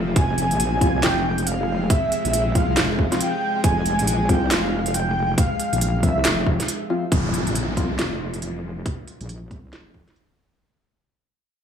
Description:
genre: deep dubstep.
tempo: 138 BPM.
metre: 4/4.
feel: swing 61% on 16ths, half-time.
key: F harmonic minor.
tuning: A4 = 440 Hz.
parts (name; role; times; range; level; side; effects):
bowed-like drone; sustained chords; 0.0-7.1 s; C3 to F4; -29 LUFS; equal; built-in reverb.
wobble bass; bass; 0.0-10.1 s; F1 to C2; -24 LUFS; equal; chorus.
breathy flute-like synth lead; melody; 0.2-6.5 s; E5 to Ab5; -25 LUFS; right 1 dB; tremolo, ensemble chorus, vintage 12-bit sampler grit, dub echo.
electronic kick drum; drums; 0.2-10.0 s; none; -22 LUFS; equal; none.
garage drum kit; drums; 0.2-10.3 s; handclaps, hi-hat, snare drum; -24 LUFS; right 2 dB; low-pass filter on hats, low-pass filter on snare, low-pass filter on room.
percussive organ stab; stabs; 0.8-8.1 s; F3 to F4; -29 LUFS; left 3 dB; analog chorus, dub echo.
downlifter; sound effects; 7.1-10.6 s; none; -29 LUFS; left 2 dB; none.
room: light reverb.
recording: small room ambience.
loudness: -19 LUFS.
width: side -8 dB against mid.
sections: 0.0-7.1 A section; 7.1-10.6 B section.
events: drop 0.0-7.1; fade-out 7.1-10.6; filter sweep on drum 7.1-10.6.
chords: 0.0 F5.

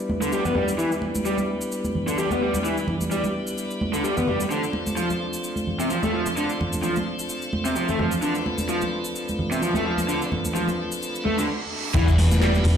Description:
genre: breakbeat, breaks.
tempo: 129 BPM.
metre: 4/4.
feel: swing 55% on 16ths.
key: unclear.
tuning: A4 = 440 Hz.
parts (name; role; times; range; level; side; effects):
tonewheel organ; sustained chords; 0.0-12.8 s; G3 to C5; -29 LUFS; left 1 dB; overdrive, slow rotary speaker, sidechain pumping, low-pass filter.
congas; percussion; 0.1-12.6 s; none; -28 LUFS; right 2 dB; none.
raw garage guitar; riff; 0.2-12.5 s; C3 to B3; -25 LUFS; equal; overdrive, digital delay.
house drum kit; drums; 0.2-12.8 s; handclaps, hi-hat, shaker; -35 LUFS; left 1 dB; overdrive.
reverse cymbal and impact; sound effects; 11.2-12.8 s; none; -30 LUFS; equal; none.
overdriven picked electric bass; bass; 11.9-12.8 s; E1 to E2; -18 LUFS; equal; tube saturation.
crunchy breakbeat drum kit; drums; 11.9-12.8 s; crash cymbal, kick drum, ride cymbal, snare drum; -25 LUFS; equal; none.
room: moderate digital room reverb, RT60 1.0 s, studio ambience.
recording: played on a big sound system in a bare room, stone room reverb.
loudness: -22 LUFS.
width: side -8 dB against mid.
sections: 0.0-11.9 A section.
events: filter sweep on tonewheel organ 0.0-11.9; reverse cymbal 11.2-11.9; impact 11.9-12.8.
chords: 0.0 Em7; 4.5 Dm7; 11.9 Em7.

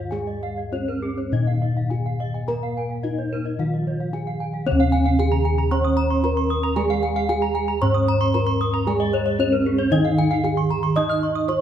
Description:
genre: Balinese gamelan.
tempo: 97-114 BPM.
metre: 4/4.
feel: straight.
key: Eb slendro.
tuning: A4 = 440 Hz.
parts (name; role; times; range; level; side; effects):
gamelan-type bronze metallophone; melody; 0.0-11.6 s; Db4-45c to Eb5; -24 LUFS; right 2 dB; none.
gamelan-type bronze metallophone; accompaniment; 0.0-11.6 s; Db3-45c to Eb4; -28 LUFS; right 4 dB; none.
gamelan-type bronze metallophone; arpeggios; 0.0-11.6 s; Ab4-35c to Eb6; -28 LUFS; left 6 dB; none.
gamelan-type bossed gongs; bass; 0.0-11.6 s; Eb2 to Eb5; -23 LUFS; left 2 dB; none.
gamelan-type bronze metallophone; arpeggios; 0.3-11.5 s; Ab4-35c to F6+30c; -29 LUFS; right 4 dB; none.
room: moderate recital hall reverb, RT60 1.5 s.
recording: dark, warm production.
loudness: -19 LUFS.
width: side -9 dB against mid.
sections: 0.0-4.7 A section; 4.7-11.6 B section.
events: none.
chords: none.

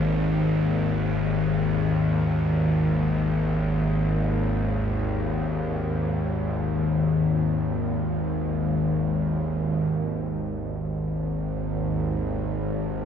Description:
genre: ambient.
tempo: free time.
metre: none.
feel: none.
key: unclear.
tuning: A4 = 441 Hz.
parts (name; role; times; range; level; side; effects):
bowed-like drone; solo; 0.0-13.1 s; G#1 to D#2; -23 LUFS; left 1 dB; built-in reverb.
room: wet cathedral reverb, RT60 6.4 s.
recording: dreamy mix soaked in reverb, cassette tape.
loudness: -23 LUFS.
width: side -8 dB against mid.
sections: 0.0-9.9 A section; 9.9-13.1 B section.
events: none.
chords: 0.0 G#5.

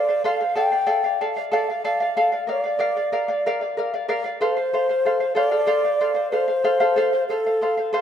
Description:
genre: andean folk.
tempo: 62 BPM (dotted quarters).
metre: 6/8.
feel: straight.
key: unclear.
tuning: A4 = 439 Hz.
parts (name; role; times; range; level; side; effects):
bansuri; melody; 0.0-8.0 s; A4 to G5; -21 LUFS; equal; none.
charango; accompaniment; 0.0-8.0 s; A4 to F5; -23 LUFS; equal; none.
room: moderate scoring stage reverb, RT60 1.8 s.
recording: none.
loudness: -19 LUFS.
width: side -9 dB against mid.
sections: 0.0-4.4 A section; 4.4-8.0 B section.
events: none.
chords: 0.0 F; 0.6 Dm; 2.5 Bb; 4.4 F.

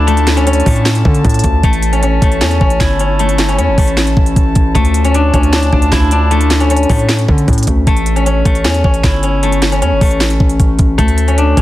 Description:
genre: hip hop, trap.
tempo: 154 BPM.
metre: 4/4.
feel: half-time.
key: unclear.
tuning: A4 = 440 Hz.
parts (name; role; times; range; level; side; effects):
steel-string zither; melody; 0.0-11.6 s; A3 to E4; -15 LUFS; left 2 dB; low-pass filter.
mellow brass ensemble; sustained chords; 0.0-7.8 s; E4 to A5; -23 LUFS; right 1 dB; none.
distorted 808-style bass; bass; 0.0-11.6 s; G1 to D3; -14 LUFS; equal; distortion.
trap drum kit; drums; 0.1-11.6 s; handclaps, hi-hat, kick drum, snare drum; -13 LUFS; equal; none.
room: studio reverb.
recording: dense, heavily limited modern master, vinyl crackle.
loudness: -9 LUFS.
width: side -15 dB against mid.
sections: 0.0-7.9 A section; 7.9-11.6 A section.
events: none.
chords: 0.0 Dm; 1.6 A; 4.8 Dm; 7.9 A5; 11.0 D5.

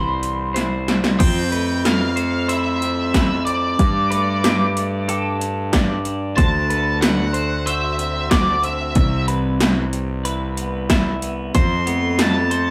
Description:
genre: post-rock.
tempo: 93 BPM.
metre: 4/4.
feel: straight.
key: unclear.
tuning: A4 = 440 Hz.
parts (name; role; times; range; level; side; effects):
octave-fuzz lead guitar; melody; 0.0-12.7 s; C5 to C6; -25 LUFS; equal; distortion.
electric guitar through a small old amp; arpeggios; 0.0-12.7 s; C3 to G4; -32 LUFS; equal; none.
twelve-string electric guitar; arpeggios; 0.0-12.7 s; B3 to B5; -30 LUFS; equal; none.
fuzz picked electric bass; bass; 0.0-12.7 s; C2 to G2; -25 LUFS; equal; overdrive.
80s electronic pad drums; drums; 0.2-12.7 s; crash cymbal, hi-hat, kick drum, snare drum; -21 LUFS; equal; none.
room: moderate studio reverb, RT60 0.7 s.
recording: band playing live in one room.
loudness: -19 LUFS.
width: mono.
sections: 0.0-1.2 A section; 1.2-12.7 B section.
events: drum fill 0.6-1.2.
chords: 0.0 Cmaj7; 1.2 Fmaj7; 3.8 Gsus2; 6.4 D7; 9.0 Cmaj7; 11.5 F.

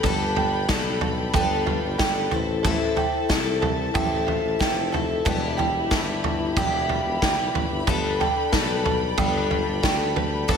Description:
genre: indie folk with a building arrangement.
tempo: 92 BPM.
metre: 4/4.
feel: straight.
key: unclear.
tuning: A4 = 440 Hz.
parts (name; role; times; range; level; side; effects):
picked twelve-string acoustic guitar; accompaniment; 0.0-10.6 s; E2 to A4; -26 LUFS; left 5 dB; none.
dark studio string section; sustained chords; 0.0-10.6 s; G4 to B5; -32 LUFS; left 1 dB; none.
open-back banjo; arpeggios; 0.0-10.6 s; F4 to B4; -28 LUFS; right 8 dB; analog delay, slapback echo.
mellow tuba; bass; 0.0-10.6 s; E1 to D2; -30 LUFS; equal; none.
natural country drum kit; drums; 0.0-10.6 s; kick drum, snare drum, toms; -25 LUFS; right 1 dB; none.
room: wet scoring stage reverb, RT60 1.6 s, small room ambience.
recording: big arena sound.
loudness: -21 LUFS.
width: side -6 dB against mid.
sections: 0.0-10.6 A section.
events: none.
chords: 0.0 Gadd9; 2.3 Am; 5.3 Em; 7.9 Gadd9.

